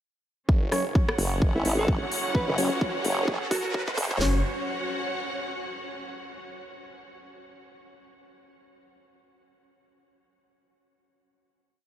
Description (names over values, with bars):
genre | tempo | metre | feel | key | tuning
bass house | 129 BPM | 4/4 | swing 57% on 16ths | unclear | A4 = 440 Hz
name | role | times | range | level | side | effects
phased detuned saw bass | bass | 0.5-4.4 s | F#1 | -31 LUFS | equal | phaser, sidechain pumping, high-pass filter
house drum kit | drums | 0.5-4.3 s | hi-hat, kick drum, snare drum | -24 LUFS | equal | studio reverb
riser | sound effects | 2.0-4.2 s | none | -37 LUFS | right 1 dB | none
rich studio string section | texture | 0.5-6.0 s | C#4 to F#5 | -33 LUFS | right 1 dB | sidechain pumping
percussive organ stab | stabs | 0.7-4.4 s | F#3 to C#5 | -34 LUFS | left 2 dB | lush chorus, sidechain pumping, tape echo
house drum kit | drums | 0.7-4.1 s | hi-hat, rim click | -32 LUFS | equal | studio reverb
formant-sweep wobble bass | bass | 1.2-4.2 s | F#1 to G#1 | -27 LUFS | equal | chorus, tube saturation, sidechain pumping
breathy alto saxophone | melody | 1.6-3.8 s | E4 to B4 | -35 LUFS | equal | tape echo
room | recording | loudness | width
moderate huge ambient reverb, RT60 7.8 s | dreamy mix soaked in reverb, high-pass filter | -24 LUFS | side -11 dB against mid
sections
0.5-4.2 build; 4.2-6.1 final chord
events
build-up 0.5-4.2; filter sweep 0.5-4.2; riser 2.0-4.2; drum fill 2.3-4.2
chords
0.5 F#5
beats
| 0.49 0.95 1.42 1.88 | 2.35 2.81 3.28 3.74 | 4.21 4.67 5.14 5.60